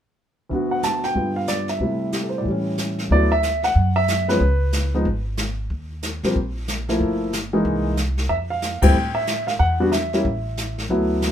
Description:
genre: jazz piano trio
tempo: 185 BPM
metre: 4/4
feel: swing 62% on 8ths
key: D major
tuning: A4 = 440 Hz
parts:
  - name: warm grand piano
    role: melody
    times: 0.5-11.3 s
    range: D2 to A5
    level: -21 LUFS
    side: equal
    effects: none
  - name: jazz brush drum kit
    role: drums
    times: 0.5-11.3 s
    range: brushed snare drum, hi-hat, kick drum, ride cymbal, snare drum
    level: -24 LUFS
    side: left 1 dB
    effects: none
  - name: upright bass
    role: bass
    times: 3.1-11.3 s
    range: G1 to Bb2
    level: -23 LUFS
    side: equal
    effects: none
room: light reverb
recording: minimal, uncompressed stereo recording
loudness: -19 LUFS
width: side -10 dB against mid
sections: 0.5-3.1 A section; 3.1-11.3 B section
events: band accent 8.8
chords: 0.5 D6; 1.2 G7; 1.8 C6; 2.5 A7; 3.1 D69; 4.4 C#7(no3); 5.7 Eb5; 7.0 Gm7; 7.7 C7alt; 8.3 Fmaj9; 9.6 Emadd9; 10.2 A5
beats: | 0.51 0.84 1.16 1.49 | 1.81 2.14 2.46 2.79 | 3.11 3.44 3.76 4.08 | 4.41 4.73 5.06 5.38 | 5.71 6.03 6.35 6.68 | 7.00 7.33 7.65 7.98 | 8.30 8.62 8.95 9.27 | 9.60 9.92 10.25 10.57 | 10.90 11.22

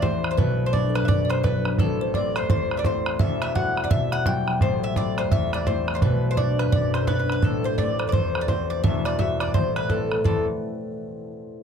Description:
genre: celtic folk, Celtic hornpipe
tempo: 170 BPM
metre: 4/4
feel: swing 62% on 8ths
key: A dorian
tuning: A4 = 440 Hz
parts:
  - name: kalimba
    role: melody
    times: 0.0-10.5 s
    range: A4 to G5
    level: -27 LUFS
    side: left 1 dB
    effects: none
  - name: Irish bouzouki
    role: second line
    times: 0.0-10.5 s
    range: A4 to G5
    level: -31 LUFS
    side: right 3 dB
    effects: none
  - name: mellow baroque flute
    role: second line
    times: 0.0-10.5 s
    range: A4 to G5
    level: -34 LUFS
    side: left 4 dB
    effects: none
  - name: concert harp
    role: accompaniment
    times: 0.0-10.5 s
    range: E1 to F#4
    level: -26 LUFS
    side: left 2 dB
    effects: none
  - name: bodhran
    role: percussion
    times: 0.0-10.5 s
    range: none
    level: -25 LUFS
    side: right 2 dB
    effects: none
room: wet small room ambience, RT60 0.5 s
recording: close, detailed microphones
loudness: -20 LUFS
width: side -7 dB against mid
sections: 0.0-10.3 A section; 10.3-11.6 B section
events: none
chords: 0.4 Bm; 1.8 Am; 3.2 Emadd9; 4.6 Am; 6.0 Bm; 7.4 Am; 8.8 Emadd9; 9.5 Am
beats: 0.03 | 0.38 0.73 1.09 1.44 | 1.79 2.15 2.50 2.85 | 3.20 3.56 3.91 4.26 | 4.61 4.97 5.32 5.67 | 6.02 6.38 6.73 7.08 | 7.43 7.78 8.14 8.49 | 8.84 9.19 9.55 9.90 | 10.25

